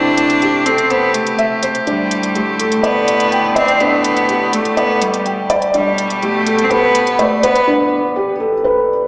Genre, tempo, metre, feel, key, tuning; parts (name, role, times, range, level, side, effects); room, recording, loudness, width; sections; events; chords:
piano and strings electronica; 124 BPM; 4/4; straight; A4 = 441 Hz
clear cello; melody; 0.0-7.7 s; G3 to D4; -19 LUFS; equal; tape echo
dark string quartet; sustained chords; 0.0-7.7 s; A2 to G4; -23 LUFS; equal; low-pass filter
felt-muted upright piano; riff; 0.0-9.1 s; D4 to G5; -18 LUFS; equal; lush chorus, tape echo
electronic hi-hat; drums; 0.2-7.7 s; -28 LUFS; equal
wet plate reverb, RT60 2.2 s; dreamy mix soaked in reverb, small speaker sound; -15 LUFS; mono
0.0-9.1 A section
build-up 0.0-9.1; break 7.7-9.1
0.0 Am7; 1.9 Dsus4/A; 5.7 Gadd9